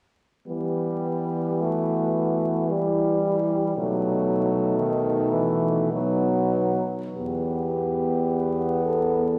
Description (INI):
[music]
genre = classical, lyrical piece for horn quartet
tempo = 44-59 BPM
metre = 3/4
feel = rubato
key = E minor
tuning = A4 = 440 Hz
[part]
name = dark French horn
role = melody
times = 0.5-9.4 s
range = D#4 to A4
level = -32 LUFS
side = equal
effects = none
[part]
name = warm French horn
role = second line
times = 0.5-9.3 s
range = G3 to B3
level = -29 LUFS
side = equal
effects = none
[part]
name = clear French horn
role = accompaniment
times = 0.5-9.4 s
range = D#3 to B3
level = -30 LUFS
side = equal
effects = none
[part]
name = mellow French horn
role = bass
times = 0.5-9.4 s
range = E2 to E3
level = -30 LUFS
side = equal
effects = none
[sound]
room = wet church reverb, RT60 2.9 s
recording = vinyl crackle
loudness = -24 LUFS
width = mono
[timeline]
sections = 0.5-7.2 A section; 7.2-9.4 B section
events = none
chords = 0.5 Em; 3.8 B7; 7.2 Em